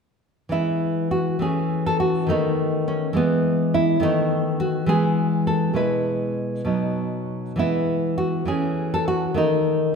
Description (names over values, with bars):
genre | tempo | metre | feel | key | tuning
classical, baroque-style dance for nylon-string guitar | 68 BPM (dotted quarters) | 6/8 | rubato | E major | A4 = 440 Hz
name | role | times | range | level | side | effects
nylon-string guitar | solo | 0.5-10.0 s | B2 to B4 | -20 LUFS | equal | none
room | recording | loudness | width
moderate concert hall reverb, RT60 1.8 s | minimal, uncompressed stereo recording | -20 LUFS | side -5 dB against mid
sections
0.5-10.0 A section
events
none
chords
0.5 E; 1.4 F#m9/E; 2.3 B7/D#; 3.2 E; 4.0 B7/D#; 4.9 E; 5.8 E/B; 6.7 B; 7.6 E; 8.5 F#m9/E; 9.4 B7/D# (rootless)